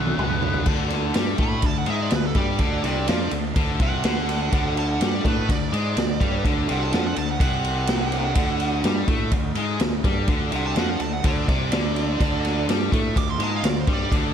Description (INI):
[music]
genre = blues rock power trio and southern rock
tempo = 125 BPM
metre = 4/4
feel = straight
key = D major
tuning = A4 = 440 Hz
[part]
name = octave-fuzz lead guitar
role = melody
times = 0.0-0.6 s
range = F#5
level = -30 LUFS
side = left 1 dB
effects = distortion, slapback echo
[part]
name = tight distorted guitar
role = riff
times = 0.0-14.3 s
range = C3 to B3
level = -27 LUFS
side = left 2 dB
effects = distortion, slapback echo
[part]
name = fuzz fingered electric bass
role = bass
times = 0.0-14.3 s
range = B1 to A2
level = -27 LUFS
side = equal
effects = overdrive
[part]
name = vintage drum kit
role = drums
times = 0.1-14.2 s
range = crash cymbal, kick drum, ride cymbal, snare drum, toms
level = -23 LUFS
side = equal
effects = none
[part]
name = tonewheel organ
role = sustained chords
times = 0.4-14.3 s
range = D4 to D5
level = -32 LUFS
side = right 3 dB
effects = chorus vibrato, slow rotary speaker
[part]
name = bluesy overdriven lead guitar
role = second line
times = 1.4-14.1 s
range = A4 to D6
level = -30 LUFS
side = right 6 dB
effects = distortion, slapback echo
[sound]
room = wet recital hall reverb, RT60 1.3 s, small room ambience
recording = big arena sound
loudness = -20 LUFS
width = side -8 dB against mid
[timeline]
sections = 0.7-14.3 A section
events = drum fill 0.0-0.7; lead electric guitar solo 0.7-14.3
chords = 0.0 D